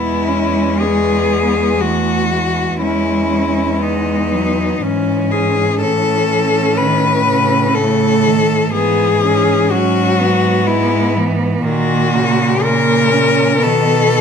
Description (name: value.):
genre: classical, lyrical piece for cello ensemble.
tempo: 61 BPM.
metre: 3/4.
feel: rubato.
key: E major.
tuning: A4 = 440 Hz.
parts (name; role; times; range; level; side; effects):
rich cello; melody; 0.0-14.2 s; C#4 to B4; -15 LUFS; left 6 dB; none.
rich cello; second line; 0.0-14.2 s; G#3 to C#4; -19 LUFS; right 8 dB; none.
rich cello; accompaniment; 0.0-14.2 s; C#3 to G#3; -20 LUFS; left 1 dB; none.
rich cello; bass; 0.0-14.2 s; E2 to B2; -20 LUFS; right 2 dB; none.
room: moderate large studio reverb, RT60 1.4 s.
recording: none.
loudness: -12 LUFS.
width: side -7 dB against mid.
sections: 0.0-14.2 A section.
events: none.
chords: 0.0 E; 2.8 C#m/E; 5.8 A; 8.7 E/G#; 11.6 F#/A#; 13.6 B.